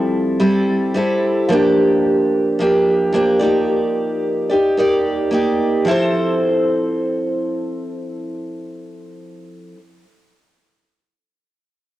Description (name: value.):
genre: indie pop.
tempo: 110 BPM.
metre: 4/4.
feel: swing 55% on 16ths.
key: F major.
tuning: A4 = 441 Hz.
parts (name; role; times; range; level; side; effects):
picked steel-string acoustic guitar; solo; 0.0-9.8 s; F3 to D5; -16 LUFS; equal; lush chorus, warbly pitch drift, cassette tape, analog delay.
room: wet spring reverb, RT60 1.8 s.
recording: home recording on cassette.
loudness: -15 LUFS.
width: side -14 dB against mid.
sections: 0.0-5.9 A section; 5.9-10.3 B section.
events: none.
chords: 0.0 Am7/F; 1.5 Bb6/F; 3.4 Ebmaj7/F; 5.9 Fmaj7.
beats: 0.40 0.95 | 1.50 2.04 2.59 3.14 | 3.69 4.23 4.78 5.33 | 5.88 6.42 6.97 7.52 | 8.07 8.61 9.16 9.71.